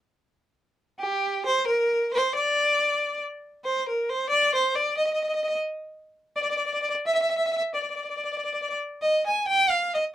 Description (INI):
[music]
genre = italian folk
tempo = 89 BPM (dotted quarters)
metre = 6/8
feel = straight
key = unclear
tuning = A4 = 440 Hz
[part]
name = clear violin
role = solo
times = 1.0-10.0 s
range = G4 to Ab5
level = -23 LUFS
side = equal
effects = none
[sound]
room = light reverb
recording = dry, close 1970s-style studio recording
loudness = -23 LUFS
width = side -12 dB against mid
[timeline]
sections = 0.0-3.7 A section; 3.7-10.1 B section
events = none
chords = none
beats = 0.30 | 0.97 1.64 | 2.31 2.98 | 3.66 4.34 | 5.01 5.68 | 6.35 7.02 | 7.69 8.36 | 9.03 9.71